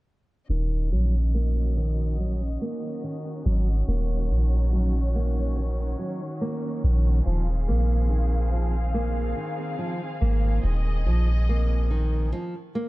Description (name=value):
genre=trip hop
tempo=71 BPM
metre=4/4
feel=straight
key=Eb dorian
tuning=A4 = 440 Hz
part: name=warm studio string section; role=sustained chords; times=0.5-12.3 s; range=Eb3 to F5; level=-34 LUFS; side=left 1 dB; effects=vintage 12-bit sampler grit
part: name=nylon-string guitar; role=arpeggios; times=0.5-12.9 s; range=Eb3 to Bb3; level=-32 LUFS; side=right 1 dB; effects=low-pass filter, digital delay
part: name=soft 808-style bass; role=bass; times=0.5-12.3 s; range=Eb1 to Bb1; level=-22 LUFS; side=equal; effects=none
room=small room ambience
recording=dark, warm production, low-pass filter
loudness=-22 LUFS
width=side -20 dB against mid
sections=0.5-12.9 A section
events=filter sweep on nylon-string guitar 0.5-12.9; filter sweep 0.5-12.9; break 12.3-12.9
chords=0.5 Ebm7; 7.3 Fm/Eb